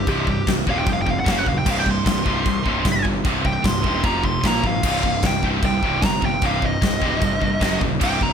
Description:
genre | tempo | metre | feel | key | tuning
heavy metal | 151 BPM | 4/4 | straight | C phrygian | A4 = 440 Hz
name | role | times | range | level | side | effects
high-gain lead guitar | melody | 0.0-8.3 s | G4 to C6 | -24 LUFS | right 1 dB | distortion, digital delay
scooped high-gain guitar | riff | 0.0-8.3 s | C2 to Bb3 | -26 LUFS | left 13 dB | distortion
scooped high-gain guitar | riff | 0.0-8.3 s | C2 to Bb3 | -26 LUFS | right 13 dB | distortion
fuzz picked electric bass | bass | 0.0-8.3 s | C1 to C2 | -26 LUFS | equal | overdrive
big rock drum kit | drums | 0.1-8.3 s | china cymbal, crash cymbal, kick drum, snare drum | -22 LUFS | equal | none
room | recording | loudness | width
light reverb | none | -18 LUFS | side -7 dB against mid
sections
0.0-8.3 A section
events
lead electric guitar solo 0.0-8.3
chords
0.0 Cm; 1.3 F#5; 1.7 C5; 4.0 F5; 4.4 Bb5; 4.8 Cm; 7.6 F#5

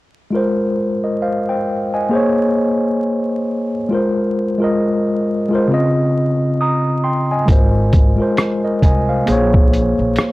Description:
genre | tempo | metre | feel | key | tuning
lo-fi hip hop | 67 BPM | 4/4 | swing 58% on 16ths | Ab major | A4 = 440 Hz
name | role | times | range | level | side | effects
mellow tine electric piano | accompaniment | 0.3-10.3 s | Db3 to Eb6 | -15 LUFS | equal | fast stereo tremolo, cassette tape, low-pass filter
upright bass | bass | 7.5-10.2 s | Ab1 to C2 | -18 LUFS | equal | tube saturation
lo-fi sampler-style drum kit | drums | 7.5-10.3 s | hi-hat, kick drum, rim click | -13 LUFS | equal | vintage 12-bit sampler grit
room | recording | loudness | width
light reverb | dry, gritty hardware recording, vinyl crackle | -14 LUFS | side -19 dB against mid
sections
0.3-10.3 A section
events
none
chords
0.3 Ab69; 2.1 Bbm9; 3.9 Ab69; 5.7 Dbmaj9; 7.5 Ab69; 9.3 Bbm9

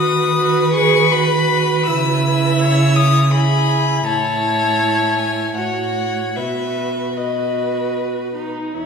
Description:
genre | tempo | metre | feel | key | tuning
classical, slow romantic movement for string quartet | 74-83 BPM | 3/4 | rubato | unclear | A4 = 440 Hz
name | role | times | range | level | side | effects
rich violin | melody | 0.0-8.9 s | C#5 to E6 | -20 LUFS | left 6 dB | none
rich violin | second line | 0.0-8.5 s | G#4 to C#5 | -22 LUFS | equal | none
warm viola | accompaniment | 0.0-8.9 s | D#4 to G#4 | -21 LUFS | right 4 dB | none
dark cello | bass | 0.0-8.9 s | E2 to D#3 | -20 LUFS | right 2 dB | none
room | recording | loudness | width
wet scoring stage reverb, RT60 1.8 s | heard from further back in the room | -15 LUFS | side -6 dB against mid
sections
0.0-8.8 A section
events
none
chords
0.0 B/D#; 1.9 C#m; 4.1 A; 5.6 F#m/A; 6.4 B

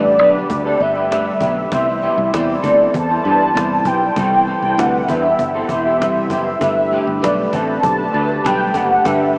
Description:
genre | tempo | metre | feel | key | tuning
indie pop, bedroom pop | 98 BPM | 4/4 | straight | G major | A4 = 439 Hz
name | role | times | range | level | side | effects
warm velvety synth lead | melody | 0.0-9.4 s | D5 to A5 | -16 LUFS | equal | ensemble chorus, tape echo
electric guitar at the edge of break-up | second line | 0.0-9.3 s | B3 to B4 | -25 LUFS | equal | ensemble chorus, tape echo
clean electric guitar | accompaniment | 0.0-9.4 s | C3 to C5 | -22 LUFS | equal | analog chorus, warbly pitch drift
hollow soft pad | sustained chords | 0.0-9.4 s | D3 to G4 | -25 LUFS | equal | chorus
fingered electric bass | bass | 0.0-9.4 s | E1 to G2 | -24 LUFS | equal | none
cajon | drums | 0.2-9.4 s | none | -28 LUFS | equal | none
mellow tine electric piano | accompaniment | 6.6-9.4 s | D4 to B4 | -24 LUFS | equal | medium stereo tremolo, cassette tape
room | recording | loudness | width
wet huge ambient reverb, RT60 5.7 s | dreamy mix soaked in reverb, small speaker sound | -13 LUFS | side -38 dB against mid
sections
0.0-9.4 A section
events
none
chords
0.0 Gadd9; 1.7 Cmaj7; 6.6 Gadd9

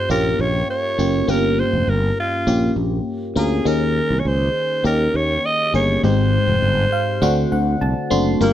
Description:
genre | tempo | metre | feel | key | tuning
1980s-style pop | 101 BPM | 4/4 | straight | unclear | A4 = 436 Hz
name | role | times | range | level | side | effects
raspy alto saxophone | melody | 0.0-8.5 s | Bb3 to Eb5 | -21 LUFS | right 1 dB | slapback echo
FM electric piano | accompaniment | 0.0-8.5 s | G2 to C6 | -20 LUFS | left 1 dB | chorus, phaser
sustaining fretless electric bass | bass | 0.1-8.5 s | F1 to Eb2 | -20 LUFS | equal | none
room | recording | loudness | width
light reverb | dry, close 1970s-style studio recording | -16 LUFS | side -11 dB against mid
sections
0.0-8.4 A section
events
FM electric piano fill 6.6-8.4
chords
0.0 Gm7b5; 3.7 Eb7sus4; 6.0 Abmaj7; 7.2 D7

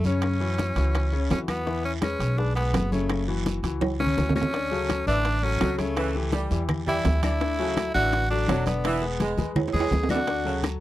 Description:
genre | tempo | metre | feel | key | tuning
latin, salsa | 167 BPM | 4/4 | straight | unclear | A4 = 440 Hz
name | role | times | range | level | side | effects
upright bass | bass | 0.0-10.8 s | E1 to F#2 | -27 LUFS | equal | none
congas | percussion | 0.0-10.8 s | none | -31 LUFS | equal | none
guiro | percussion | 0.0-10.8 s | none | -42 LUFS | right 8 dB | none
raspy tenor saxophone | melody | 0.1-10.6 s | A3 to G#4 | -28 LUFS | right 1 dB | none
clear grand piano | accompaniment | 0.1-10.7 s | C#3 to E5 | -30 LUFS | left 6 dB | none
bongos | percussion | 0.2-10.8 s | none | -31 LUFS | left 4 dB | none
claves | percussion | 0.2-10.8 s | none | -41 LUFS | left 9 dB | none
timbales | percussion | 0.2-10.8 s | none | -31 LUFS | right 7 dB | none
bright saxophone section | second line | 4.7-10.6 s | C#3 to G#3 | -31 LUFS | right 2 dB | none
room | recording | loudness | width
little or no reverb | dry, close 1970s-style studio recording | -22 LUFS | side -14 dB against mid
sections
0.0-4.5 A section; 4.5-10.8 B section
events
drum fill 3.8-4.5, 8.8-10.3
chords
0.2 F#5; 1.7 E; 3.1 F#5; 4.5 Dmaj7; 6.0 A7/C#; 7.4 D; 8.8 E7; 10.3 Dmaj7

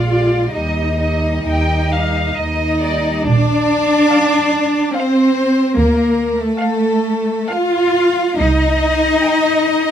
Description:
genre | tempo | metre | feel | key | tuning
classical, slow romantic movement for string orchestra | 64-74 BPM | 3/4 | rubato | Eb major, Bb major from 3.3 s | A4 = 445 Hz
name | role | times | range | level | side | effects
warm studio violin section | melody | 0.0-9.8 s | D5 to G5 | -23 LUFS | equal | none
warm chamber violin section | second line | 0.0-9.9 s | A4 to F5 | -21 LUFS | left 3 dB | none
warm studio viola section | accompaniment | 0.0-9.9 s | G3 to G4 | -21 LUFS | right 1 dB | none
dark chamber cello section | bass | 0.0-9.9 s | A3 to F4 | -17 LUFS | equal | none
dark chamber double bass section | bass | 0.0-9.1 s | Bb1 to Eb2 | -18 LUFS | right 2 dB | none
room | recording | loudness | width
light reverb | close, detailed microphones | -13 LUFS | side -9 dB against mid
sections
0.0-3.3 A section; 3.3-9.9 B section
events
none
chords
0.0 Bb6; 0.5 Eb; 3.3 Bb; 5.8 Bb/D; 8.4 Cm

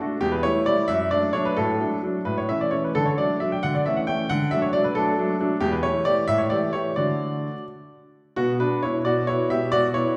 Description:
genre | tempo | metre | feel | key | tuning
classical-period piano sonatina | 89 BPM (dotted quarters) | 6/8 | rubato | D major | A4 = 438 Hz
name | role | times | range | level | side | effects
clear baby grand piano | solo | 0.0-10.2 s | E2 to G5 | -23 LUFS | equal | none
room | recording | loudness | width
wet recital hall reverb, RT60 1.6 s | heard from further back in the room | -23 LUFS | mono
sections
0.0-8.4 A section; 8.4-10.2 B section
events
none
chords
0.2 A5/E; 0.9 D/F#; 1.6 D/A; 2.3 A; 3.0 D; 5.6 A5/E; 6.3 A5; 7.0 D; 8.4 Bm; 9.1 Em13/B

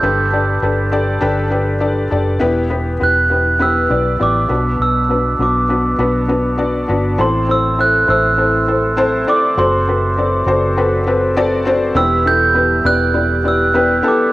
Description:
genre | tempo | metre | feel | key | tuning
piano-driven pop | 101 BPM | 4/4 | swing 56% on 16ths | E minor | A4 = 440 Hz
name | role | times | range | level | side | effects
glockenspiel with rubber mallets | melody | 0.0-14.3 s | C6 to G6 | -17 LUFS | right 2 dB | none
felt-muted upright piano | accompaniment | 0.0-14.3 s | G2 to D5 | -16 LUFS | left 2 dB | cassette tape
vintage muted fingered electric bass | bass | 0.0-14.0 s | E1 to B1 | -20 LUFS | equal | none
warm French horn section | sustained chords | 7.2-14.3 s | E3 to G4 | -27 LUFS | equal | none
room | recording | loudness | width
moderate spring reverb, RT60 1.9 s, small room ambience | home recording on cassette | -13 LUFS | side -17 dB against mid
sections
0.0-7.2 A section; 7.2-14.3 B section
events
none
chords
0.0 Gadd9; 2.4 Em; 4.5 Bm; 7.2 Am; 9.6 F#dim; 12.0 Em

